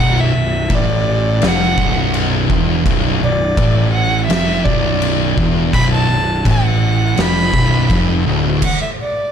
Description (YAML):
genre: stoner and doom metal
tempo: 83 BPM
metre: 4/4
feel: straight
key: B minor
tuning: A4 = 440 Hz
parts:
  - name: dark violin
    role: melody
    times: 0.0-9.3 s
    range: D5 to B5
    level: -20 LUFS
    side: right 1 dB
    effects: none
  - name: thick fuzz guitar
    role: riff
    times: 0.0-8.6 s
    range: B1 to A2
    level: -19 LUFS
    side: left 11 dB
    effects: distortion
  - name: thick fuzz guitar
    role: riff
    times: 0.0-8.6 s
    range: B1 to A2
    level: -19 LUFS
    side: right 9 dB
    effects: distortion
  - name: fuzz picked electric bass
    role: bass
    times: 0.0-8.6 s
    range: B0 to A1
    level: -20 LUFS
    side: equal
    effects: overdrive
  - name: oversized low-tuned drum kit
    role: drums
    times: 0.7-8.8 s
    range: crash cymbal, kick drum, snare drum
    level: -19 LUFS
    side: equal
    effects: none
room: studio ambience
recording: none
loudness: -13 LUFS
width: side -8 dB against mid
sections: 0.0-9.3 A section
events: stop 8.6-9.3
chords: 0.0 Bm